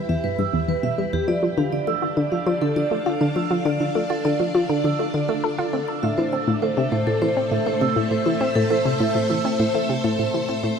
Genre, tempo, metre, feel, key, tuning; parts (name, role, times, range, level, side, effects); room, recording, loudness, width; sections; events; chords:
ambient, sequencer-driven space music; 101 BPM; 4/4; straight; A minor; A4 = 443 Hz
string machine, full ensemble; sustained chords; 0.0-10.8 s; A3 to B5; -27 LUFS; left 1 dB; ensemble chorus
vibraphone with medium hard mallets; arpeggios; 0.1-10.7 s; G4 to E6; -25 LUFS; moving between left 1 dB and right 6 dB; auto-pan, tape echo
analog pluck; riff; 0.1-10.7 s; E2 to A4; -22 LUFS; left 1 dB; chorus, tape echo
wet huge ambient reverb, RT60 8.3 s; -19 LUFS; side -6 dB against mid
0.0-10.8 A section
fade-in on string machine 0.0-10.8; filter sweep on synth arpeggio sound 0.0-10.8; fade-out 9.2-10.8
0.0 Em; 1.3 Dm; 6.0 Am